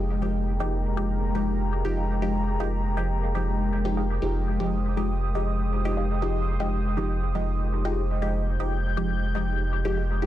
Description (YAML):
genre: techno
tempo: 120 BPM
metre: 4/4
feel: straight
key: F minor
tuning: A4 = 440 Hz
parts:
  - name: dark analog pad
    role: sustained chords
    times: 0.0-10.3 s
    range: Ab3 to G6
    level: -31 LUFS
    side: left 3 dB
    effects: chorus
  - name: filtered dub chord stab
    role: stabs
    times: 0.0-10.3 s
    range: F3 to G4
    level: -30 LUFS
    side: equal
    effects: phaser, cassette tape, dub echo
  - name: warm sub bass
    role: bass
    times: 0.0-10.3 s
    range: F1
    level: -26 LUFS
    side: equal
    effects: none
  - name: bubbling stepped-filter texture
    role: texture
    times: 0.0-10.3 s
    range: Bb3 to C5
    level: -40 LUFS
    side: right 2 dB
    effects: chorus, built-in reverb
  - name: filtered dub chord stab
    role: riff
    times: 2.0-6.7, 10.0-10.1 s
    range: Ab4 to G5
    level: -42 LUFS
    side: right 1 dB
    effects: none
room: little or no reverb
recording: dense, heavily limited modern master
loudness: -24 LUFS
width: side -13 dB against mid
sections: 0.0-10.3 A section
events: none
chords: 0.0 Fm9